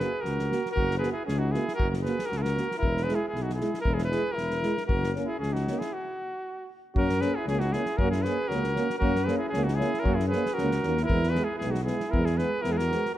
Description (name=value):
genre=balkan folk, Balkan brass band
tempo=116 BPM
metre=2/4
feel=straight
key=F# mixolydian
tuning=A4 = 445 Hz
part: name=clear cornet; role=melody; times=0.0-13.2 s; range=F#4 to B4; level=-30 LUFS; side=equal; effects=none
part: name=dark trumpet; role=second line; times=0.0-13.2 s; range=C#4 to G#4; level=-34 LUFS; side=right 3 dB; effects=none
part: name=warm euphonium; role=accompaniment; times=0.0-13.0 s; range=B3 to F#4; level=-36 LUFS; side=left 5 dB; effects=none
part: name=warm euphonium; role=accompaniment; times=0.0-13.0 s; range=G#3 to A#3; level=-35 LUFS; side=right 5 dB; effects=none
part: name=unplugged drum kit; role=percussion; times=0.0-13.1 s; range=kick drum, snare drum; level=-33 LUFS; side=equal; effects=none
part: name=mellow tuba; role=bass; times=0.2-12.9 s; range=E1 to F#2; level=-29 LUFS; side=left 1 dB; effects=none
room=light reverb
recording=dark, warm production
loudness=-25 LUFS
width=side -13 dB against mid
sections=0.0-7.0 A section; 7.0-13.2 A section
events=stop 5.9-7.0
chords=0.0 F#; 2.8 E; 4.9 F#; 11.1 E